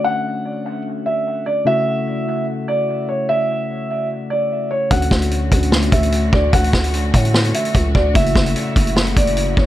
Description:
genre	hip hop, trap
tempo	148 BPM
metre	4/4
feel	half-time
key	F# minor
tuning	A4 = 437 Hz
part	dark concert grand piano	melody	0.0-9.7 s	C#5 to F#5	-21 LUFS	right 1 dB	low-pass filter, dub echo
part	soft electric-piano-like synth keys	accompaniment	0.0-9.7 s	C#3 to F#4	-24 LUFS	left 3 dB	chorus, low-pass filter, dub echo
part	muted studio string section	sustained chords	4.9-9.7 s	C#3 to F#4	-28 LUFS	equal	none
part	growling 808-style bass	bass	4.9-9.7 s	F#1 to A2	-18 LUFS	equal	none
part	vintage drum kit	drums	4.9-9.7 s	hi-hat, kick drum, snare drum	-17 LUFS	equal	dub echo
room	little or no reverb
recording	echo-heavy mix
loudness	-15 LUFS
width	side -14 dB against mid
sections	0.0-9.7 A section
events	none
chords	0.0 Dmaj7; 1.7 F#m7; 4.9 Dmaj7; 8.2 F#m7

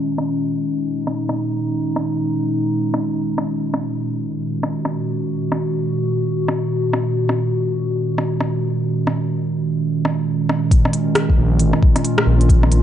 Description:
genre	future garage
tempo	135 BPM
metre	4/4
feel	swing 62% on 16ths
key	Bb minor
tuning	A4 = 441 Hz
part	warbly tape-like pad	sustained chords	0.0-12.8 s	Bb2 to Gb4	-19 LUFS	right 1 dB	chorus, built-in reverb, vintage 12-bit sampler grit, sidechain pumping
part	organic electronic drum kit	drums	0.2-12.8 s	hi-hat, rim click	-22 LUFS	left 1 dB	overdrive
part	electronic kick drum	drums	10.7-12.6 s	none	-14 LUFS	equal	overdrive
part	dark detuned saw bass	bass	11.4-12.8 s	Ab1 to Bb1	-15 LUFS	left 1 dB	tube saturation, sidechain pumping
room	light reverb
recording	dry, gritty hardware recording, low-pass filter, nothing above 10.5 kHz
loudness	-17 LUFS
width	side -10 dB against mid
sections	0.0-10.7 A section; 10.7-12.8 B section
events	filter sweep 0.0-10.7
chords	0.0 Bbm7; 3.6 Gb69/Bb; 10.7 Bbm7

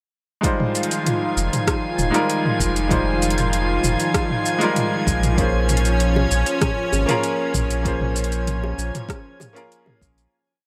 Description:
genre	sunset chillout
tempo	97 BPM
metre	4/4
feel	straight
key	F minor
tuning	A4 = 440 Hz
part	bright concert grand piano	accompaniment	0.4-10.4 s	G3 to C5	-27 LUFS	equal	digital delay
part	lush unison pad	sustained chords	0.4-10.3 s	Eb3 to F4	-26 LUFS	equal	chorus
part	deep house drum kit	drums	0.4-10.3 s	hi-hat, rim click, shaker, toms	-27 LUFS	equal	overdrive
part	electronic kick drum	drums	0.4-10.1 s	none	-27 LUFS	equal	overdrive
part	drifting glass-harmonics texture	texture	0.9-10.4 s	Ab5 to Ab6	-33 LUFS	equal	chorus, built-in reverb
part	warm sub bass	bass	1.4-10.3 s	Eb1 to Bb1	-24 LUFS	equal	none
part	bongos	percussion	6.2-10.0 s	none	-33 LUFS	equal	none
room	light reverb, digital ambience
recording	none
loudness	-20 LUFS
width	mono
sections	0.4-10.3 groove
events	fade-out 7.0-10.3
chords	0.4 Fm7; 5.4 Bbm9

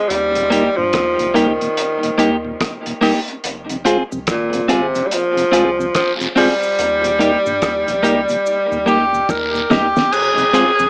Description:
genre	roots reggae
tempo	72 BPM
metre	4/4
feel	swing 61% on 16ths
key	unclear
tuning	A4 = 443 Hz
part	clear tenor saxophone	melody	0.0-10.9 s	Bb2 to Bb4	-19 LUFS	equal	dub echo
part	warm sub bass	bass	0.1-10.9 s	F1 to G2	-35 LUFS	equal	none
part	cloth-damped thuddy drum kit	drums	0.1-10.8 s	crash cymbal, hi-hat, kick drum, rim click, snare drum	-24 LUFS	equal	none
part	mellow tonewheel organ	accompaniment	0.4-10.9 s	Eb2 to F4	-26 LUFS	equal	slow rotary speaker, dub echo
part	clean electric guitar	accompaniment	0.5-10.7 s	Bb3 to Ab4	-22 LUFS	equal	dub echo
part	cabasa and guiro	percussion	3.4-10.9 s	none	-32 LUFS	equal	none
room	moderate studio reverb, RT60 0.5 s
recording	small speaker sound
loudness	-17 LUFS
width	mono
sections	0.0-10.1 A section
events	drum fill 8.5-10.1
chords	0.1 Eb; 3.4 Fm; 6.8 Eb; 10.1 Fm

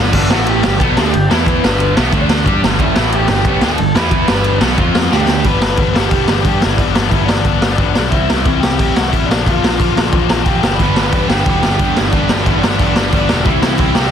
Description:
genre	punk rock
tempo	180 BPM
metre	4/4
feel	straight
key	G major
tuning	A4 = 440 Hz
part	distorted electric guitar	riff	0.0-14.1 s	G2 to G4	-18 LUFS	left 15 dB	distortion
part	distorted electric guitar	riff	0.0-5.5, 10.8-14.1 s	G2 to G4	-19 LUFS	right 15 dB	distortion
part	growling picked electric bass	bass	0.0-14.1 s	E1 to G2	-19 LUFS	equal	overdrive
part	raw garage drum kit	drums	0.1-14.0 s	crash cymbal, kick drum, ride cymbal, snare drum	-15 LUFS	equal	none
part	lead guitar through a small cranked amp	melody	0.2-14.1 s	D4 to B5	-20 LUFS	right 1 dB	overdrive
room	small room ambience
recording	dense, heavily limited modern master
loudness	-11 LUFS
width	side -8 dB against mid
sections	0.1-5.5 A section; 5.5-14.1 B section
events	drum fill 5.1-5.5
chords	0.1 G5; 0.3 A5; 0.6 G; 1.3 E5; 1.6 G; 2.1 D5; 2.5 G5; 3.0 A5; 3.3 G; 4.0 E5; 4.3 G; 4.8 F5; 5.1 D5; 5.5 G; 8.1 C; 9.3 Bb; 10.8 G; 13.5 C

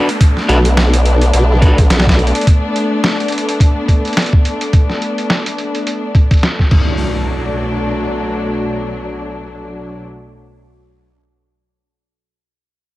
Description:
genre	glitch hop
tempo	106 BPM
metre	4/4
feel	swing 57% on 16ths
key	B minor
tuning	A4 = 437 Hz
part	dark studio string section	sustained chords	0.0-10.0 s	B2 to D4	-19 LUFS	left 1 dB	vintage 12-bit sampler grit, sidechain pumping
part	electric guitar at the edge of break-up	stabs	0.0-1.8 s	D4 to B4	-20 LUFS	equal	sidechain pumping, tape echo
part	downlifter and impact	sound effects	0.0-2.5, 6.7-10.8 s	none	-25 LUFS	equal	none
part	boom bap sampler-style drum kit	drums	0.1-6.8 s	crash cymbal, hi-hat, snare drum	-18 LUFS	equal	low-pass filter on hats, low-pass filter on snare, low-pass filter on cymbals
part	electronic kick drum	drums	0.2-6.8 s	none	-10 LUFS	equal	none
part	formant-sweep wobble bass	bass	0.5-2.3 s	B1	-12 LUFS	equal	chorus, tube saturation
room	little or no reverb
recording	none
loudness	-12 LUFS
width	side -17 dB against mid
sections	0.0-7.0 A section; 7.0-9.3 B section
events	none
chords	0.0 Bm7

